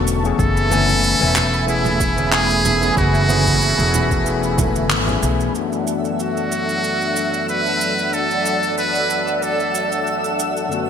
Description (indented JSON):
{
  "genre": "sunset chillout",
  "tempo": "93 BPM",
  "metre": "4/4",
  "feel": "swing 54% on 16ths",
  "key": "unclear",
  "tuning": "A4 = 442 Hz",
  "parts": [
    { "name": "overdriven tine electric piano", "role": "accompaniment", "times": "0.0-10.9 s", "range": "F#2 to G#5", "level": "-23 LUFS", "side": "moving between left 8 dB and right 6 dB", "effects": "auto-pan, digital delay, shimmer reverb" },
    { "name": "lush unison pad", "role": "sustained chords", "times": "0.0-10.9 s", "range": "F#3 to C#6", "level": "-23 LUFS", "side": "equal", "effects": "chorus, shimmer reverb" },
    { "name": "upright bass", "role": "bass", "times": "0.0-5.5 s", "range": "E1 to B1", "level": "-21 LUFS", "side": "equal", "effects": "none" },
    { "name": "electronic shaker and handclaps", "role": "drums", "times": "0.1-10.9 s", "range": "none", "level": "-25 LUFS", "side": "right 2 dB", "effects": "overdrive, gated reverb" },
    { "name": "trumpet with metal mute", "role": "melody", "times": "0.4-10.4 s", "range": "E4 to B4", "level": "-20 LUFS", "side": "equal", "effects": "ping-pong delay, shimmer reverb" },
    { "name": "electronic kick drum", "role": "drums", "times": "0.4-4.7 s", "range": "none", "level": "-22 LUFS", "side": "equal", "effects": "overdrive" },
    { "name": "congas", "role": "percussion", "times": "0.7-5.2 s", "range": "none", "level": "-28 LUFS", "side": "right 4 dB", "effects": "none" },
    { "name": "twinkling granular texture", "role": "texture", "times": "6.0-10.9 s", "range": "E5 to E6", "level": "-29 LUFS", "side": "right 1 dB", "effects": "built-in reverb, analog chorus, shimmer reverb" }
  ],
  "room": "moderate lush hall reverb, RT60 2.3 s",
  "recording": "bright 1980s-style digital production",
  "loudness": "-16 LUFS",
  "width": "side -8 dB against mid",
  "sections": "0.0-5.6 A section; 5.6-10.9 B section",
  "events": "band accent 4.9-5.2",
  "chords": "0.4 F#m11; 5.6 E9sus4/F#",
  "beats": "| 0.39 1.04 1.68 2.33 | 2.97 3.62 4.26 4.91 | 5.55 6.20 6.84 7.49 | 8.13 8.78 9.42 10.07 | 10.71"
}